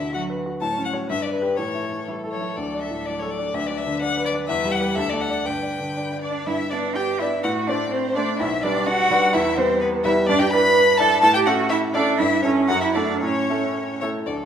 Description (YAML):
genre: quick classical-period movement for piano quartet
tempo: 125 BPM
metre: 2/4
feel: rubato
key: G major from 4.5 s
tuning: A4 = 439 Hz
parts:
  - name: rich violin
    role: melody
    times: 0.0-14.3 s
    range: B4 to B5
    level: -27 LUFS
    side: left 5 dB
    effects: none
  - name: rich violin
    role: second line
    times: 0.0-14.5 s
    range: E4 to B5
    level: -26 LUFS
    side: left 2 dB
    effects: none
  - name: clear grand piano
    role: accompaniment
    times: 0.0-14.5 s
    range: B1 to D5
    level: -24 LUFS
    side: left 1 dB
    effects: none
  - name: rich cello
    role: second line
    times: 0.1-14.5 s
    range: D3 to B4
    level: -24 LUFS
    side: right 4 dB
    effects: none
room: wet recital hall reverb, RT60 1.4 s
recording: none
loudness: -19 LUFS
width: side -8 dB against mid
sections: 0.0-6.5 A section; 6.5-14.3 B section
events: none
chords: 0.0 Bm/D; 0.6 F#m/A; 1.1 G; 1.6 A; 2.6 D; 3.5 Bm/D; 4.5 Em; 5.0 D; 5.5 G; 7.4 D5/A; 8.4 G/B; 9.3 Em; 10.3 Em7/G; 11.2 A; 12.2 A7/G; 12.7 D/F#; 13.2 A